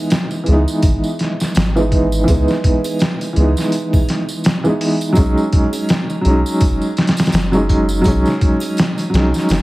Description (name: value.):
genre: trip hop.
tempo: 83 BPM.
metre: 4/4.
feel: swing 57% on 16ths.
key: C# minor.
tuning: A4 = 441 Hz.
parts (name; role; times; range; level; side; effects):
dark upright piano; accompaniment; 0.0-9.6 s; E3 to D#4; -17 LUFS; right 1 dB; tremolo, tape echo.
trip hop sampler-style drum kit; drums; 0.1-9.6 s; hi-hat, kick drum, snare drum; -16 LUFS; equal; small room reverb.
tambourine and triangle; percussion; 0.1-9.6 s; none; -33 LUFS; right 2 dB; none.
soft dub sub bass; bass; 0.5-9.6 s; F#1 to C#2; -17 LUFS; equal; none.
reverse cymbal; sound effects; 9.6 s; none; barely audible; none; none.
room: light reverb, digital ambience.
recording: heavily compressed radio sound, vinyl crackle.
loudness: -13 LUFS.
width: side -19 dB against mid.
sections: 0.0-9.6 A section.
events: none.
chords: 0.0 C#m7 (rootless); 5.2 B6.